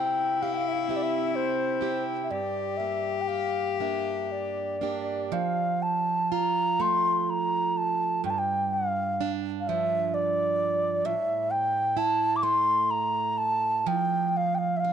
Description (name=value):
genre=celtic folk, Celtic slow air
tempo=39-44 BPM (dotted quarters)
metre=6/8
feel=rubato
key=unclear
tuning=A4 = 440 Hz
part: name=reedy baroque flute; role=melody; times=0.0-14.9 s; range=C5 to D6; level=-26 LUFS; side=left 1 dB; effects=none
part: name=rich cello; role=second line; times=0.0-5.3 s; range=D4 to G4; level=-31 LUFS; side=left 14 dB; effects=none
part: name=picked plugged-in steel-string acoustic guitar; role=accompaniment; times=0.0-14.9 s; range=G2 to G4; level=-32 LUFS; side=right 13 dB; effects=none
room=moderate spring reverb, RT60 2.4 s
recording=1960s-style stereo with parts hard left and right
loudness=-24 LUFS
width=side -8 dB against mid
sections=0.0-5.3 A section; 5.3-14.9 B section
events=none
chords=0.0 C; 2.3 Gm; 5.3 F; 8.2 G5; 11.0 A5; 13.9 F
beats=0.88 | 2.30 3.79 | 5.31 6.80 | 8.24 9.66 | 11.04 12.43 | 13.87